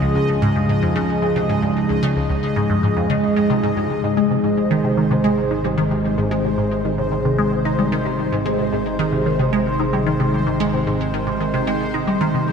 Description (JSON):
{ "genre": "ambient, sequencer-driven space music", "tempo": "112 BPM", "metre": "4/4", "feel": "straight", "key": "unclear", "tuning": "A4 = 439 Hz", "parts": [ { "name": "evolving wavetable pad", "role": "sustained chords", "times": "0.0-12.5 s", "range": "C3 to Ab4", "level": "-20 LUFS", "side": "equal", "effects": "chorus, built-in reverb, phaser" }, { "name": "resonant blip pluck", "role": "riff", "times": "0.0-12.4 s", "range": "Db2 to Eb4", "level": "-21 LUFS", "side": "equal", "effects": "phaser, wide subtle chorus, tape echo" }, { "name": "analog drone", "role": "bass", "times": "0.0-12.5 s", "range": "Ab1 to Db2", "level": "-29 LUFS", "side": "equal", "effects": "chorus" }, { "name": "bubbling stepped-filter texture", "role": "texture", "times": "0.0-12.5 s", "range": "C5 to Eb5", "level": "-27 LUFS", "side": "left 1 dB", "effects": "chorus, built-in reverb" } ], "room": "wet cathedral reverb, RT60 6.1 s", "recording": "in a vast, echoing space", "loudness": "-17 LUFS", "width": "side -6 dB against mid", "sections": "0.0-12.5 A section", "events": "none", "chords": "0.0 Db; 4.0 Ab" }